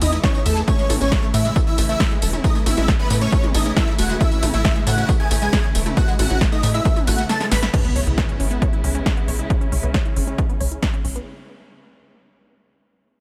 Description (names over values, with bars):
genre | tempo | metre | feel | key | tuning
uplifting trance | 136 BPM | 4/4 | straight | C# minor | A4 = 439 Hz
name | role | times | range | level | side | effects
supersaw chords | melody | 0.0-7.7 s | A3 to B5 | -28 LUFS | equal | ensemble chorus, sidechain pumping, digital delay
plucky unison lead | second line | 0.0-7.7 s | A5 to B6 | -32 LUFS | equal | ensemble chorus, sidechain pumping, tape echo
warm symphonic string section | sustained chords | 0.0-11.2 s | B2 to E4 | -32 LUFS | equal | sidechain pumping, low-pass filter
unison pluck | arpeggios | 0.0-11.2 s | G#3 to E5 | -31 LUFS | equal | sidechain pumping, tape echo
tight sequencer bass | bass | 0.0-11.2 s | E1 to A2 | -24 LUFS | equal | sidechain pumping
big-room dance drum kit | drums | 0.0-11.2 s | crash cymbal, hi-hat, ride cymbal, snare drum, tambourine, toms | -28 LUFS | equal | overdrive, sidechain pumping on hats, sidechain pumping on perc, sidechain pumping on cymbals, sidechain pumping on toms
electronic kick drum | drums | 0.2-10.9 s | none | -22 LUFS | equal | overdrive
impact | sound effects | 7.8-9.5 s | none | -33 LUFS | equal | none
room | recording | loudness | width
digital ambience | none | -19 LUFS | mono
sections
0.0-7.7 A section; 7.7-11.3 B section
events
drop 0.0-7.7; kick drops out 7.3-7.7; drum fill 7.3-7.7; impact 7.7-9.5; filter sweep on analog synth bass 7.7-11.3; filter sweep on synth pluck 7.7-11.3; filter sweep on string section 7.7-11.3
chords
0.0 E; 7.7 C#m7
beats
0.24 | 0.68 1.12 1.56 2.00 | 2.44 2.88 3.32 3.77 | 4.21 4.65 5.09 5.53 | 5.97 6.41 6.85 7.29 | 7.74 8.18 8.62 9.06 | 9.50 9.94 10.38 10.82